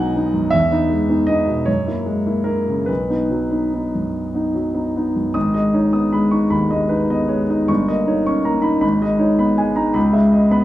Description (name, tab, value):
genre	classical, romantic character piece for solo piano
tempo	47-54 BPM (dotted quarters)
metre	6/8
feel	rubato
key	B major, G# minor from 5.4 s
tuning	A4 = 440 Hz
part	warm grand piano	solo	0.0-10.6 s	G1 to D#6	-16 LUFS	equal	none
room	wet large studio reverb, RT60 1.0 s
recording	heard from further back in the room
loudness	-16 LUFS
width	side -14 dB against mid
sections	0.0-5.4 A section; 5.4-10.6 B section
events	none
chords	0.0 B; 0.5 Emaj7; 1.7 F#9; 2.9 B; 5.4 G#m; 7.7 D#7/G; 8.8 G#m; 10.0 C#m7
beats	| 0.53 1.68 | 2.89 4.14 | 5.35 6.53 | 7.69 8.83 | 9.96